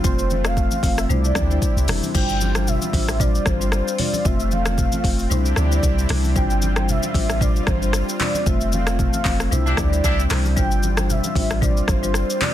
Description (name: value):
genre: afrobeats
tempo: 114 BPM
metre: 4/4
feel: swing 55% on 16ths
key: unclear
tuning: A4 = 440 Hz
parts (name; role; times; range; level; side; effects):
- warm velvety synth lead; melody; 0.0-12.5 s; C5 to G5; -27 LUFS; right 1 dB; chorus, digital delay
- marimba with medium mallets; accompaniment; 0.0-12.2 s; G3 to C5; -26 LUFS; left 5 dB; none
- lush unison pad; sustained chords; 0.0-12.5 s; C3 to G4; -30 LUFS; right 1 dB; chorus
- punchy sub bass; bass; 0.0-12.2 s; F1 to D2; -22 LUFS; equal; none
- afro-pop drum kit; drums; 0.0-12.5 s; crash cymbal, handclaps, hi-hat, kick drum, rim click, shaker; -22 LUFS; equal; soft clipping on snare
- congas; percussion; 0.0-12.5 s; none; -30 LUFS; right 4 dB; none
- warm horn section; second line; 9.7-10.2 s; D4 to G4; -27 LUFS; left 1 dB; digital delay
room: digital ambience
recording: dense, heavily limited modern master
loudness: -17 LUFS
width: side -12 dB against mid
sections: 0.0-2.1 A section; 2.1-12.5 B section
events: band accent 8.5-10.6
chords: 0.0 F; 1.1 Cadd9; 2.1 G7sus4; 4.3 F; 5.3 Cadd9; 6.4 G7sus4; 8.5 F; 9.5 Cadd9; 10.6 G7sus4